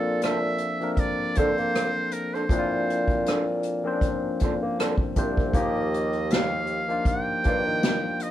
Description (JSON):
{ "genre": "R&B, neo-soul", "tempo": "79 BPM", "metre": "4/4", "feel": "swing 54% on 16ths", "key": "unclear", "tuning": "A4 = 440 Hz", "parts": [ { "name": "trumpet with metal mute", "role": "melody", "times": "0.0-8.3 s", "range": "A4 to G5", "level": "-29 LUFS", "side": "right 2 dB", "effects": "none" }, { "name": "barky tine electric piano", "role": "accompaniment", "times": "0.0-8.3 s", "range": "F3 to C5", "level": "-28 LUFS", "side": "left 2 dB", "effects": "none" }, { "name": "dark bassoon", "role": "bass", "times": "0.0-8.0 s", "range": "C2 to Bb3", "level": "-28 LUFS", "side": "right 1 dB", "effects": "none" }, { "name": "electric guitar through a small old amp", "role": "second line", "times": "0.2-7.6 s", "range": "D4 to D5", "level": "-32 LUFS", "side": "right 3 dB", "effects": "none" }, { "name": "unplugged drum kit", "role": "drums", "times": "0.2-8.3 s", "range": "hi-hat, kick drum, rim click, snare drum", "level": "-26 LUFS", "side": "equal", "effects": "none" } ], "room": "light reverb", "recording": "band playing live in one room", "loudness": "-22 LUFS", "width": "side -12 dB against mid", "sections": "0.0-8.3 A section", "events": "none", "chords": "0.0 Bbmaj9; 5.5 Ebmaj9" }